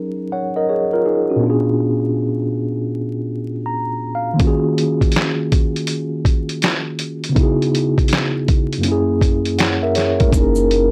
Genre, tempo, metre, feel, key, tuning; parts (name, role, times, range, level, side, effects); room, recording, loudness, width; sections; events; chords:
lo-fi hip hop; 81 BPM; 4/4; swing 65% on 16ths; F# major; A4 = 440 Hz
mellow tine electric piano; accompaniment; 0.0-10.9 s; F#2 to A#5; -20 LUFS; equal
lo-fi sampler-style drum kit; drums; 4.4-10.9 s; handclaps, hi-hat, kick drum, snare drum; -19 LUFS; equal
vibraphone with soft mallets; melody; 10.3-10.9 s; A#4; -20 LUFS; equal
round analog bass; bass; 10.3-10.9 s; F#1; -22 LUFS; equal; transformer saturation
tube shaker; percussion; 10.3-10.7 s; -36 LUFS; equal
light reverb; dry, gritty hardware recording, vinyl crackle; -18 LUFS; mono
0.0-10.3 A section
tine electric piano fill 3.3-4.4
0.0 F#6; 1.4 A#7b9; 4.4 D#m11; 7.4 C#m11; 8.8 F#7; 10.3 F#6